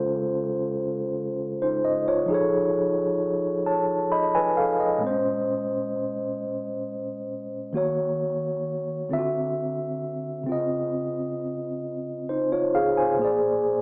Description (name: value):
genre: R&B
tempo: 44 BPM (dotted quarters)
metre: 6/8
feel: straight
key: Db major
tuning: A4 = 440 Hz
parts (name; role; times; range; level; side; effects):
- mellow tine electric piano; solo; 0.0-13.8 s; Bb2 to Cb6; -26 LUFS; equal; none
room: wet studio reverb, RT60 0.8 s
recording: small speaker sound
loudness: -26 LUFS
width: mono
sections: 0.0-13.8 A section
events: none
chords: 0.0 Dbmaj7; 2.3 F7alt; 5.0 Bbm9; 7.7 Ebm7; 9.1 D9; 10.5 Dbmaj9; 13.2 Bb7